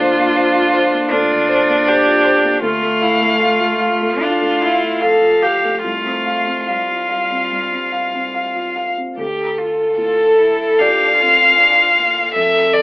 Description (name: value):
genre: neoclassical piano and strings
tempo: 74 BPM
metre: 4/4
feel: uneven beats, rubato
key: D minor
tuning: A4 = 442 Hz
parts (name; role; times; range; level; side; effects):
- warm violin; melody; 0.0-12.8 s; A4 to F5; -16 LUFS; left 1 dB; none
- warm cello; second line; 0.0-12.8 s; F3 to G4; -19 LUFS; right 1 dB; none
- felt-muted upright piano; accompaniment; 0.0-12.8 s; C2 to F5; -21 LUFS; left 1 dB; none
- rich viola; accompaniment; 0.0-12.8 s; D4 to A4; -18 LUFS; equal; none
room: moderate small room reverb, RT60 0.6 s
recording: band playing live in one room, telephone sound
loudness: -12 LUFS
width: side -21 dB against mid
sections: 0.0-9.2 A section; 9.2-12.8 B section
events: none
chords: 0.0 Bbadd9/D; 2.6 Dm; 5.8 Csus4; 9.2 Dm